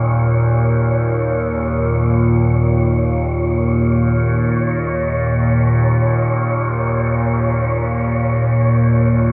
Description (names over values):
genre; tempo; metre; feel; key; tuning
dark ambient drone; free time; none; none; unclear; A4 = 440 Hz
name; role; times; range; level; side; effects
overtone-sweeping drone; drone; 0.0-9.3 s; Eb2 to Bb2; -17 LUFS; equal; chorus, built-in reverb
wind-like tuned noise texture; texture; 0.0-9.3 s; Db5; -26 LUFS; equal; built-in reverb
room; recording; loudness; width
wet huge ambient reverb, RT60 9.1 s; dark, warm production; -17 LUFS; mono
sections
0.0-9.3 A section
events
none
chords
0.0 Eb5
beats
free time